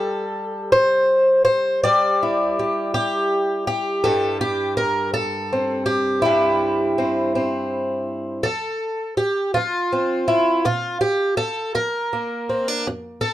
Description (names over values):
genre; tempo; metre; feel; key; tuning
folk, solo fingerstyle acoustic guitar; 54 BPM (dotted quarters); 6/8; straight; unclear; A4 = 444 Hz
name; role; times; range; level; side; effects
fingerpicked twelve-string acoustic guitar; solo; 0.0-13.3 s; F2 to D5; -18 LUFS; equal; none
room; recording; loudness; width
light reverb; dark, warm production; -18 LUFS; side -14 dB against mid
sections
0.0-8.4 A section; 8.4-13.3 B section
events
none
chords
0.0 C/G; 8.4 F; 10.6 Bb5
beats
0.73 | 1.83 2.93 | 4.03 5.13 | 6.24 7.34 | 8.44 9.54 | 10.65 11.75 | 12.86